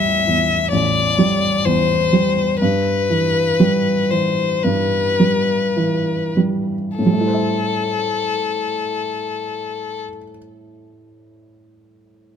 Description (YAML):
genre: neoclassical piano and strings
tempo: 48-66 BPM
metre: 4/4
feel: rubato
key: A minor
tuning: A4 = 437 Hz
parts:
  - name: rich violin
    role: melody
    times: 0.0-10.0 s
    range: A4 to E5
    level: -19 LUFS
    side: left 6 dB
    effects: none
  - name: felt-muted upright piano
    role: accompaniment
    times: 0.0-12.4 s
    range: A1 to E5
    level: -18 LUFS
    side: right 2 dB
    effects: none
room: little or no reverb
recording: close, detailed microphones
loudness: -16 LUFS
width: side -8 dB against mid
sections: 0.0-7.0 A section; 7.0-11.9 B section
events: slowing down 0.0-7.0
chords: 0.0 Am7; 2.6 Em/G; 7.0 Am7